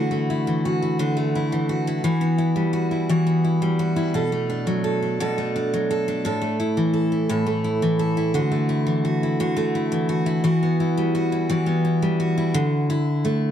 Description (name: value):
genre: pop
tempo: 57 BPM (dotted quarters)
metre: 6/8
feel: straight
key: unclear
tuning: A4 = 438 Hz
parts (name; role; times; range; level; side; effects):
- picked steel-string acoustic guitar; solo; 0.0-13.5 s; A2 to A4; -20 LUFS; equal; none
room: light reverb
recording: dry, close 1970s-style studio recording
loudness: -20 LUFS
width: side -9 dB against mid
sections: 0.0-12.5 A section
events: none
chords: 0.0 Dadd9; 2.1 Emadd9; 4.2 Bm7; 6.2 A5; 8.3 Dadd9; 10.4 Emadd9; 12.5 Dadd9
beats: 1.00 | 2.05 3.10 | 4.15 5.20 | 6.25 7.30 | 8.35 9.40 | 10.45 11.50 | 12.55